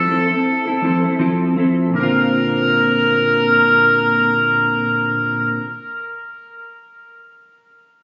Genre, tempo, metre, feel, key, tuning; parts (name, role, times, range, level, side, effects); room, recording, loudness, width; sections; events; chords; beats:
indie pop; 81 BPM; 4/4; swing 55% on 16ths; Bb lydian; A4 = 440 Hz
clear oboe; melody; 0.0-5.6 s; A4 to Bb4; -19 LUFS; equal; lush chorus, plate reverb, tape echo
clean electric guitar; accompaniment; 0.0-5.7 s; Bb2 to A4; -21 LUFS; equal; analog chorus, vibrato effect, plate reverb
moderate studio reverb, RT60 0.6 s; recorded on a phone in the room, studio reverb, compression, nothing above 7.7 kHz; -16 LUFS; mono
0.0-1.9 A section; 1.9-4.9 B section
0.0 Fmaj7; 1.9 Bbadd9
0.45 1.19 | 1.93 2.67 3.41 4.15